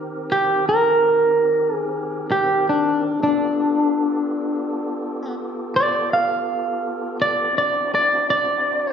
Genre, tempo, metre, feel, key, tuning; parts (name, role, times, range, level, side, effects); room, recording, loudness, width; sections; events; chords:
blues; 55 BPM (dotted quarters); 12/8; straight; A4 = 439 Hz
tonewheel organ; sustained chords; 0.0-8.9 s; Eb3 to Bb4; -28 LUFS; right 1 dB; slow rotary speaker, overdrive, chorus vibrato
electric guitar at the edge of break-up; melody; 0.3-8.9 s; D4 to F5; -18 LUFS; equal
wet large studio reverb, RT60 1.4 s; band playing live in one room; -18 LUFS; side -7 dB against mid
0.0-8.9 A section
clean electric guitar solo 0.0-8.9
0.0 Cm7; 3.2 G9; 7.5 D9